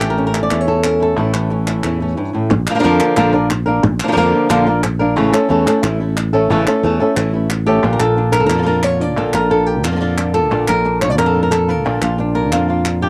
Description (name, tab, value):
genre	flamenco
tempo	180 BPM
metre	4/4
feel	straight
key	unclear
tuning	A4 = 440 Hz
part	flamenco guitar	melody	0.0-13.1 s	G2 to D5	-18 LUFS	equal	cassette tape
part	flamenco guitar	stabs	0.0-13.1 s	D3 to F4	-25 LUFS	equal	cassette tape
part	sustaining fretless electric bass	bass	0.0-13.1 s	A1 to F2	-21 LUFS	equal	none
part	palmas hand claps	percussion	0.0-13.0 s	none	-26 LUFS	equal	none
room	light reverb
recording	home recording on cassette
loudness	-16 LUFS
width	mono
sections	0.0-2.5 A section; 2.5-7.8 B section; 7.8-13.1 C section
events	none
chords	0.0 A; 2.5 Bb; 5.2 A; 7.8 Bb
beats	0.17 0.51 0.84 | 1.17 1.51 1.84 2.17 | 2.51 2.84 3.17 3.50 | 3.84 4.17 4.50 4.84 | 5.17 5.50 5.83 6.17 | 6.50 6.84 7.17 7.50 | 7.84 8.17 8.51 8.84 | 9.18 9.51 9.85 10.18 | 10.52 10.85 11.19 11.52 | 11.85 12.19 12.52 12.86